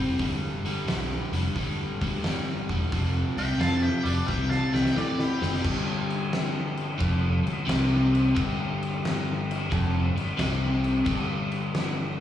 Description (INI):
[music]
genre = blues rock power trio and southern rock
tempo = 88 BPM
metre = 4/4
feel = swing 67% on 8ths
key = unclear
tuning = A4 = 441 Hz
[part]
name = overdriven electric guitar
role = riff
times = 0.0-12.2 s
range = F2 to C4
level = -28 LUFS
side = left 1 dB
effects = none
[part]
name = growling fingered electric bass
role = bass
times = 0.0-12.2 s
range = E1 to A2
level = -28 LUFS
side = left 1 dB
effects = overdrive
[part]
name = oversized low-tuned drum kit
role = drums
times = 0.2-12.0 s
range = crash cymbal, hi-hat, kick drum, snare drum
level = -30 LUFS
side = equal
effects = none
[part]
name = octave-fuzz lead guitar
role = melody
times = 3.4-5.6 s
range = G4 to A5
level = -34 LUFS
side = equal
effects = distortion, slapback echo
[part]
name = lightly driven lead guitar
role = second line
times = 3.4-5.6 s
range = E4 to F5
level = -36 LUFS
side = equal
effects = slapback echo
[sound]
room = light reverb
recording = live gig heard through the venue's PA, club reverb, small room reverb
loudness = -24 LUFS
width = side -11 dB against mid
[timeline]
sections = 0.0-5.6 A section; 5.6-12.2 B section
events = drum fill 4.3-5.6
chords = 0.2 G5; 2.9 F5; 4.3 C5; 5.6 G5